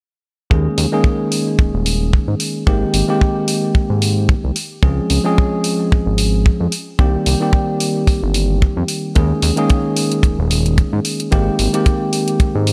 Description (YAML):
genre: nu-disco, nu disco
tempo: 111 BPM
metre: 4/4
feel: swing 55% on 16ths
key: Eb mixolydian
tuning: A4 = 440 Hz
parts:
  - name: tine electric piano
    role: accompaniment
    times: 0.5-12.7 s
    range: Eb3 to Ab4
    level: -21 LUFS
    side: equal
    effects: digital delay
  - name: fat analog bass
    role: bass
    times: 0.5-12.7 s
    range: Eb1 to Ab2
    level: -20 LUFS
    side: equal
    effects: none
  - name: kick drum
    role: drums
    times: 0.5-12.5 s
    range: none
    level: -16 LUFS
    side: equal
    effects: none
  - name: electronic hi-hat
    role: drums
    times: 0.8-12.7 s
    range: none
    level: -25 LUFS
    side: equal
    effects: none
room: light reverb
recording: bright 1980s-style digital production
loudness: -16 LUFS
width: mono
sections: 0.5-12.7 A section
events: filter sweep on analog synth bass 0.5-12.7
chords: 0.5 Eb7sus4; 2.7 Abmaj9; 4.6 Dbmaj7; 6.7 Cm7; 9.2 Eb7sus4; 11.3 Abmaj9